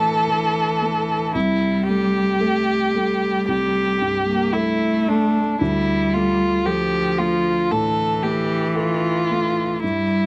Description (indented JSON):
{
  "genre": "neoclassical piano and strings",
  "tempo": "56 BPM",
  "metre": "4/4",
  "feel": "rubato",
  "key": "D minor",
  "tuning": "A4 = 439 Hz",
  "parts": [
    { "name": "muted violin", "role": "melody", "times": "0.0-10.3 s", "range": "D4 to A4", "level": "-23 LUFS", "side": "equal", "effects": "none" },
    { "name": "muted cello", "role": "second line", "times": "0.0-10.3 s", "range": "E3 to Bb3", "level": "-25 LUFS", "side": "equal", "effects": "none" },
    { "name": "felt-muted upright piano", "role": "accompaniment", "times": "0.0-10.3 s", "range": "C2 to A4", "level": "-28 LUFS", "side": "equal", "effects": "none" }
  ],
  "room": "moderate large studio reverb, RT60 1.2 s",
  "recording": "close, detailed microphones",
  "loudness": "-20 LUFS",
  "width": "mono",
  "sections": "0.0-10.3 A section",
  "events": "none",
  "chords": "0.0 Dsus2; 1.3 Am7/C; 5.6 Dmadd9",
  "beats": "0.28 | 1.34 2.41 3.47 4.54 | 5.60 6.65 7.70 8.75 | 9.82"
}